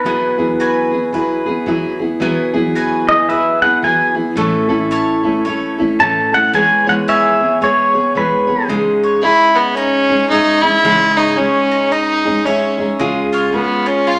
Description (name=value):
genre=acoustic folk duo or small band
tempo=111 BPM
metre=4/4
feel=swing 62% on 8ths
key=unclear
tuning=A4 = 440 Hz
part: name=pedal steel guitar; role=second line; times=0.0-8.7 s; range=B4 to A5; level=-16 LUFS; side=equal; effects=none
part: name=picked steel-string acoustic guitar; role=accompaniment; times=0.0-14.2 s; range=A2 to C#5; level=-20 LUFS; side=equal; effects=none
part: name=bowl-back mandolin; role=arpeggios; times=0.1-14.2 s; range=G#3 to A5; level=-25 LUFS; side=equal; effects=none
part: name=warm fiddle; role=melody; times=9.2-14.2 s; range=B3 to E#4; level=-15 LUFS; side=equal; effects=none
room=wet large studio reverb, RT60 1.1 s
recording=none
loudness=-15 LUFS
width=mono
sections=0.0-8.7 A section; 8.7-14.2 B section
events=pedal steel guitar solo 0.0-8.7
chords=0.1 Eadd9; 4.4 A; 6.5 E6; 8.7 C#madd9; 13.0 C#